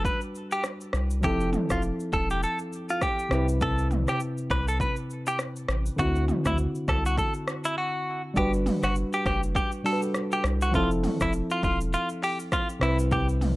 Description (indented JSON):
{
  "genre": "afrobeats",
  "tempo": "101 BPM",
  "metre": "4/4",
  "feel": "swing 58% on 16ths",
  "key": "G major",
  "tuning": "A4 = 440 Hz",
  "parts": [
    { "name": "direct-recorded clean electric guitar", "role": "melody", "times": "0.0-13.3 s", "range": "E4 to B4", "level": "-29 LUFS", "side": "equal", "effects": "none" },
    { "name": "tine electric piano", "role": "accompaniment", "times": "0.0-13.6 s", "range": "C3 to B4", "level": "-29 LUFS", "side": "equal", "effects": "none" },
    { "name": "round analog bass", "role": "bass", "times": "0.0-13.6 s", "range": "E1 to D2", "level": "-28 LUFS", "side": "equal", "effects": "none" },
    { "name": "deep house drum kit", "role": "drums", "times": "0.0-13.6 s", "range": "hi-hat, kick drum, rim click, shaker, toms", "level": "-30 LUFS", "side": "equal", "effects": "vintage 12-bit sampler grit" }
  ],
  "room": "digital ambience",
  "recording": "dry, gritty hardware recording",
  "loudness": "-24 LUFS",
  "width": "side -19 dB against mid",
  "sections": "0.0-8.4 A section; 8.4-13.6 B section",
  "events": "break 7.8-8.4",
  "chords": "0.0 Gmaj7; 1.2 Fmaj7; 3.3 Cmaj7; 6.0 D9; 8.4 Gmaj7; 10.7 Fmaj7; 12.8 Cmaj7"
}